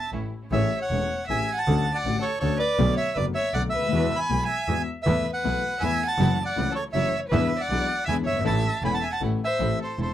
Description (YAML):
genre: tango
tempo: 159 BPM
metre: 3/4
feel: rubato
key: A major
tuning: A4 = 441 Hz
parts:
  - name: bandoneon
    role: melody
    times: 0.0-10.1 s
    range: C5 to B5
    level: -27 LUFS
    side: right 2 dB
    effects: none
  - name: warm violin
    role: second line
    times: 0.0-10.1 s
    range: A4 to G#5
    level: -30 LUFS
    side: left 2 dB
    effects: none
  - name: warm grand piano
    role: accompaniment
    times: 0.1-10.1 s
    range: E1 to A4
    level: -29 LUFS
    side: left 7 dB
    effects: none
  - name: rich studio string section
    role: stabs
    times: 0.1-0.3, 5.1-10.1 s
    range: F#3 to E4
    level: -36 LUFS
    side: right 6 dB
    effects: tape echo
  - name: clear double bass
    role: bass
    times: 0.1-10.1 s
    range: E1 to E2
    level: -27 LUFS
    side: right 2 dB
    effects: none
room: light reverb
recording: dry, close 1970s-style studio recording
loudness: -22 LUFS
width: side -11 dB against mid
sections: 0.5-9.6 A section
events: none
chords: 0.0 A; 0.5 Amaj7; 1.7 Dmaj7; 2.8 Bm7; 3.9 Eadd9; 5.1 Esus4; 6.2 F#m7; 7.3 E7; 8.5 A; 9.6 Am